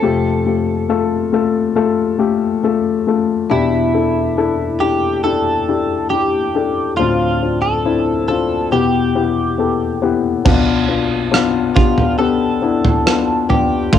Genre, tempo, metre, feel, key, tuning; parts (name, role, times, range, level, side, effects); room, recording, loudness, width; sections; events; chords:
pop ballad; 69 BPM; 4/4; straight; A4 = 440 Hz
direct-recorded clean electric guitar; melody; 0.0-14.0 s; E4 to A4; -20 LUFS; right 2 dB; analog chorus
dark upright piano; accompaniment; 0.0-14.0 s; B1 to A4; -15 LUFS; left 6 dB; cassette tape
loose indie drum kit; drums; 10.5-14.0 s; crash cymbal, kick drum, rim click, toms; -16 LUFS; right 2 dB; cassette tape
moderate studio reverb, RT60 0.5 s; home recording on cassette; -14 LUFS; side -9 dB against mid
0.0-10.5 A section; 10.5-14.0 B section
0.0 Fadd9; 3.5 Em7; 7.0 Dm7; 8.7 Em; 10.5 Bdim